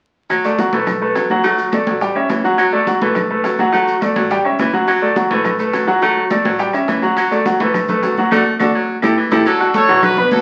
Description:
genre	latin, salsa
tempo	210 BPM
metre	4/4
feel	straight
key	D major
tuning	A4 = 440 Hz
part	bright baritone saxophone	second line	0.3-10.4 s	E3 to A3	-23 LUFS	equal	none
part	upright bass	bass	0.3-10.4 s	A1 to D2	-39 LUFS	equal	none
part	bongos and cowbell	percussion	0.3-10.4 s	none	-30 LUFS	equal	none
part	claves	percussion	0.3-10.2 s	none	-30 LUFS	equal	none
part	congas	percussion	0.3-10.4 s	none	-25 LUFS	equal	none
part	maracas	percussion	0.3-10.4 s	none	-44 LUFS	equal	none
part	bright concert grand piano	accompaniment	0.4-10.4 s	F#3 to F#6	-18 LUFS	equal	none
part	bright horn section	melody	9.5-10.4 s	D4 to C#5	-17 LUFS	equal	none
room	wet large studio reverb, RT60 1.0 s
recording	very old 78 rpm record, vinyl crackle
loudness	-16 LUFS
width	mono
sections	0.3-9.5 A section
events	band accent 8.3-9.5; drum fill 8.6-9.5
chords	0.3 Bm7; 1.4 D; 2.0 A7; 2.6 Bm7; 3.7 D; 4.3 A7; 4.9 Bm7; 6.0 D; 6.6 A7; 7.2 Bm7; 8.3 D; 8.9 A5; 9.5 D

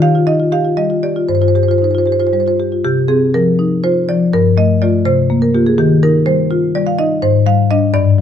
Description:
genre	classical, contemporary piece for solo marimba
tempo	76-84 BPM (dotted quarters)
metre	6/8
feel	rubato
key	C minor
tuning	A4 = 440 Hz
part	marimba with medium mallets	solo	0.0-8.2 s	G2 to F5	-11 LUFS	left 1 dB	none
room	moderate stone room reverb, RT60 1.1 s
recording	dark, warm production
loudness	-11 LUFS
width	side -8 dB against mid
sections	0.0-2.8 A section; 2.8-8.2 B section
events	none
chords	0.0 Ebadd9; 1.3 G7sus4; 2.8 Cm7; 4.3 Gsus2; 5.1 C7sus4; 5.8 Eb69; 7.2 Abmaj7#11

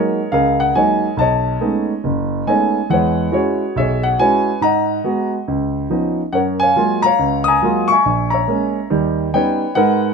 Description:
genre	solo jazz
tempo	140 BPM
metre	4/4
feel	swing 66% on 8ths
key	F# major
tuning	A4 = 442 Hz
part	warm grand piano	solo	0.0-10.1 s	F#1 to D#6	-14 LUFS	equal	none
room	light reverb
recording	minimal, uncompressed stereo recording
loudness	-14 LUFS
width	side -5 dB against mid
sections	0.0-10.1 A section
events	none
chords	0.0 F#69; 1.2 B13; 2.9 E69; 4.6 G#m7; 5.5 C#9; 6.3 F#maj9; 8.0 A#m7b5; 8.9 D#aug7

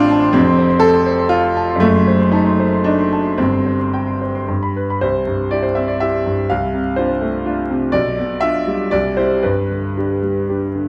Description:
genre	classical, romantic character piece for solo piano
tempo	108-128 BPM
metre	3/4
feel	rubato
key	C major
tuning	A4 = 441 Hz
part	clear grand piano	solo	0.0-10.9 s	F1 to C6	-17 LUFS	equal	none
room	wet recital hall reverb, RT60 1.7 s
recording	dark, warm production, vinyl crackle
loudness	-17 LUFS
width	mono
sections	0.0-5.0 A section; 5.0-10.9 B section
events	none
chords	0.4 F; 1.8 F#dim7; 3.4 Gsus4; 4.5 G; 5.0 C; 6.5 Dm7/C; 7.9 G7/B; 8.9 C; 9.4 G

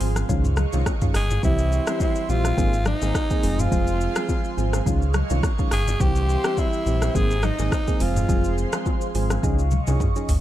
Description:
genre	afrobeats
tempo	105 BPM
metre	4/4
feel	swing 55% on 16ths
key	F minor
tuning	A4 = 438 Hz
part	soft electric-piano-like synth keys	accompaniment	0.0-10.3 s	Eb3 to Ab4	-28 LUFS	right 2 dB	chorus
part	airy breathy pad	sustained chords	0.0-10.4 s	G4 to Db6	-33 LUFS	right 2 dB	chorus, phaser, sidechain pumping
part	sub bass with octave	bass	0.0-10.4 s	F1 to Db2	-23 LUFS	equal	none
part	afro-pop drum kit	drums	0.0-10.4 s	hi-hat, kick drum, rim click, shaker, toms	-24 LUFS	equal	none
part	bongos and congas	percussion	0.0-10.1 s	none	-33 LUFS	left 10 dB	none
part	growling alto saxophone	melody	1.2-8.6 s	Eb4 to Ab4	-27 LUFS	equal	tape echo
room	little or no reverb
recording	dark, warm production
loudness	-20 LUFS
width	side -13 dB against mid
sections	0.0-10.4 A section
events	drum fill 9.4-10.4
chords	0.3 Dbadd9; 1.4 C; 2.6 Abadd9; 3.4 Fm; 4.9 Dbadd9; 6.0 C; 7.1 Abadd9; 8.0 Fm; 9.4 Dbadd9

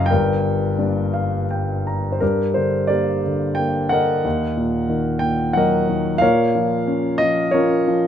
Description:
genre	classical, lyrical solo piano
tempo	80-92 BPM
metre	3/4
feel	rubato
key	unclear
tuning	A4 = 441 Hz
part	dark grand piano	solo	0.0-8.1 s	F#1 to Bb5	-17 LUFS	equal	none
room	light reverb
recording	close, detailed microphones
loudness	-17 LUFS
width	side -9 dB against mid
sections	0.0-2.2 A section; 2.2-8.1 B section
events	grand piano fill 0.8-2.2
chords	0.1 Gm; 4.3 Ebm; 6.2 Bbm

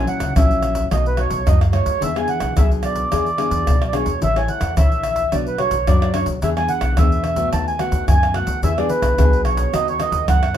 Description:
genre	samba and choro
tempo	109 BPM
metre	4/4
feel	straight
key	unclear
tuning	A4 = 440 Hz
part	mellow accordion	melody	0.0-10.6 s	B4 to A5	-21 LUFS	right 3 dB	none
part	nylon-string guitar	accompaniment	0.0-10.6 s	A#2 to C#5	-25 LUFS	left 6 dB	none
part	upright bass	bass	0.0-10.6 s	A1 to F#2	-22 LUFS	equal	none
part	pandeiro, tube shaker, tamborim and surdo	percussion	0.1-10.6 s	none	-20 LUFS	equal	none
room	moderate studio reverb, RT60 0.7 s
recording	minimal, uncompressed stereo recording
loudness	-16 LUFS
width	side -10 dB against mid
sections	0.0-10.6 A section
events	none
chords	0.0 F#7; 0.9 B7; 2.0 E7; 4.2 A; 5.3 Bmadd9; 6.4 E7; 7.5 B7/D#; 8.6 E7; 9.7 B7/D#

